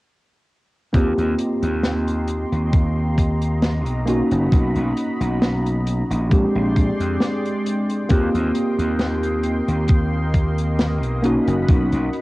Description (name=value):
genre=vaporwave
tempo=67 BPM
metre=4/4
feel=swing 54% on 16ths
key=Eb major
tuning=A4 = 440 Hz
part: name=mellow tine electric piano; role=accompaniment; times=0.9-12.2 s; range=Ab3 to G4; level=-22 LUFS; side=equal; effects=analog chorus, cassette tape, tape echo
part: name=lush unison pad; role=sustained chords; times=0.9-12.2 s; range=Ab3 to C6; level=-30 LUFS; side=equal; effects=chorus, cassette tape
part: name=gritty slap bass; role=bass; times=0.9-12.1 s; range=F#1 to F2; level=-22 LUFS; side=equal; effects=overdrive
part: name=electronic kick drum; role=drums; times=0.9-11.9 s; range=none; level=-16 LUFS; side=equal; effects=cassette tape
part: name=open jazz drum kit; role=drums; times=0.9-12.2 s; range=hi-hat, snare drum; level=-25 LUFS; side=equal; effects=cassette tape
room=studio reverb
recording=home recording on cassette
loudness=-18 LUFS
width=side -20 dB against mid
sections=0.9-12.2 A section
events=none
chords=0.9 Eb6; 4.1 Bmaj7; 6.3 Bb13; 8.1 Eb6; 11.2 Bmaj7